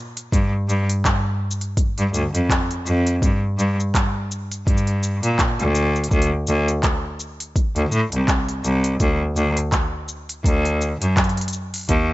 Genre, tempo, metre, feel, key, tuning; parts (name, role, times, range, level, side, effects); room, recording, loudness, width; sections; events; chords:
folktronica; 83 BPM; 4/4; swing 56% on 16ths; G minor; A4 = 443 Hz
organic electronic drum kit; drums; 0.2-12.1 s; handclaps, hi-hat, shaker; -26 LUFS; equal; overdrive
bright cello; bass; 0.3-12.1 s; C2 to Bb2; -20 LUFS; equal
electronic kick drum; drums; 0.3-12.1 s; -20 LUFS; equal; overdrive
little or no reverb; nothing above 7.9 kHz; -18 LUFS; side -17 dB against mid
0.0-12.1 A section